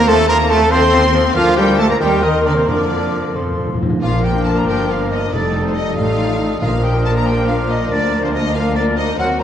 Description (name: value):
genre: classical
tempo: 93 BPM (dotted quarters)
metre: 6/8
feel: straight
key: Bb major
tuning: A4 = 440 Hz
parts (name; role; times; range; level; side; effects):
- warm symphonic violin section; melody; 0.0-9.4 s; C5 to C6; -25 LUFS; left 2 dB; none
- warm symphonic violin section; second line; 0.0-9.4 s; C4 to C6; -28 LUFS; left 2 dB; none
- warm symphonic viola section; accompaniment; 0.0-9.4 s; A3 to Bb4; -23 LUFS; equal; none
- mellow trumpet; stabs; 0.0-9.4 s; C4 to C5; -21 LUFS; right 1 dB; none
- rich symphonic cello section; bass; 0.0-9.4 s; D2 to C4; -22 LUFS; right 1 dB; none
- rich symphonic double bass section; bass; 0.0-9.4 s; F1 to F2; -21 LUFS; right 2 dB; none
- mellow clarinet; second line; 0.1-9.4 s; A4 to Bb4; -25 LUFS; left 3 dB; none
- silver concert flute; second line; 0.1-9.4 s; C5 to D6; -26 LUFS; left 1 dB; none
- warm oboe; second line; 0.1-9.4 s; C5 to C6; -27 LUFS; right 2 dB; none
- clear bassoon; accompaniment; 0.1-9.4 s; Eb3 to G3; -26 LUFS; equal; none
- mellow French horn section; sustained chords; 0.1-9.4 s; C3 to Eb4; -23 LUFS; left 4 dB; none
- timpani; percussion; 2.7-7.2 s; F2 to Bb2; -22 LUFS; equal; none
room: wet scoring stage reverb, RT60 1.7 s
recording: dark, warm production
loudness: -13 LUFS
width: side -9 dB against mid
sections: 0.0-4.0 A section; 4.0-9.4 A section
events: timpani fill 3.3-4.0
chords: 0.1 F7/Eb; 1.4 Bb/D; 2.0 Cm7/Eb; 2.7 Bb/F; 3.3 F; 4.0 Bb; 5.3 F9; 6.6 Bb; 7.9 Bb/D